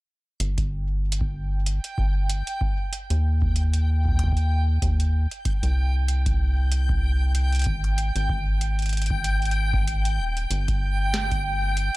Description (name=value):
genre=IDM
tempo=95 BPM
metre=4/4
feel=swing 56% on 16ths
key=unclear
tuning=A4 = 440 Hz
part: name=rubbery square bass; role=bass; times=0.4-11.9 s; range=Eb1 to Eb2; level=-22 LUFS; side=equal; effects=none
part: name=booming analog drum machine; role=drums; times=0.4-12.0 s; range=hi-hat, snare drum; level=-32 LUFS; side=right 1 dB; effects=none
part: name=backwards swelling texture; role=texture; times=1.2-12.0 s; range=G5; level=-31 LUFS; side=equal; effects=built-in reverb
part: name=electronic kick drum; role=drums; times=0.6-11.4 s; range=none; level=-27 LUFS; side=equal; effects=none
room=little or no reverb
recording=dry, gritty hardware recording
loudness=-21 LUFS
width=side -19 dB against mid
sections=0.4-12.0 A section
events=none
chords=0.4 N.C.; 2.9 Eb; 5.5 C5; 8.0 Ab5; 10.5 N.C.